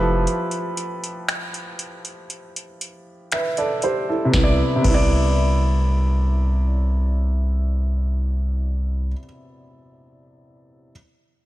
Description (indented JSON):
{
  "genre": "contemporary R&B",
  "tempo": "59 BPM",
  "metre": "4/4",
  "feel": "straight",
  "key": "C major",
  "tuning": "A4 = 441 Hz",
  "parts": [
    { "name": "warm grand piano", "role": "accompaniment", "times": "0.0-10.9 s", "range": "C3 to E5", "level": "-23 LUFS", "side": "right 1 dB", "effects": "none" },
    { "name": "long sustained 808-style bass", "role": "bass", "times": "0.0-9.1 s", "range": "F1 to C2", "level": "-19 LUFS", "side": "equal", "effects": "none" },
    { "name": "booming analog drum machine", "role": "drums", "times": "0.3-5.1 s", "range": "crash cymbal, finger snaps, hi-hat, kick drum, snare drum", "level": "-24 LUFS", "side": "equal", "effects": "overdrive, vintage 12-bit sampler grit" }
  ],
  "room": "light reverb, digital ambience",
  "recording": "none",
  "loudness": "-19 LUFS",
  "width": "side -16 dB against mid",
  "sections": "0.0-4.3 A section; 4.3-8.4 B section",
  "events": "break 0.3-4.3",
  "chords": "0.0 Fmaj9#11; 4.3 Cmaj9"
}